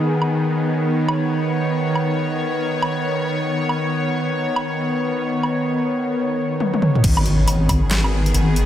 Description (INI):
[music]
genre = deep dubstep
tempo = 138 BPM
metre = 4/4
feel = swing 61% on 16ths, half-time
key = G# minor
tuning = A4 = 439 Hz
[part]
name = bowed-like drone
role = sustained chords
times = 0.0-8.7 s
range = D#3 to C#5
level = -20 LUFS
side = equal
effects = built-in reverb
[part]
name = dubstep drum kit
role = drums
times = 0.2-8.7 s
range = crash cymbal, handclaps, hi-hat, snare drum, toms, woodblock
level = -24 LUFS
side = equal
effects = overdrive, studio reverb
[part]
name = deep soft wobble bass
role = bass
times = 7.0-8.7 s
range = G#1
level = -18 LUFS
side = equal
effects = chorus, tube saturation
[part]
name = electronic kick drum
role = drums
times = 7.0-7.8 s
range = none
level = -19 LUFS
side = equal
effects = overdrive, studio reverb
[part]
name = impact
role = sound effects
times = 7.0-8.7 s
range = none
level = -26 LUFS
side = equal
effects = none
[sound]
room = wet huge ambient reverb, RT60 6.5 s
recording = dreamy mix soaked in reverb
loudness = -18 LUFS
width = side -11 dB against mid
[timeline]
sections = 0.0-7.0 A section; 7.0-8.7 B section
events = drum fill 6.6-7.0; drop 7.0-8.7; impact 7.0-8.7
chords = 0.0 G#m (rootless); 7.0 G#m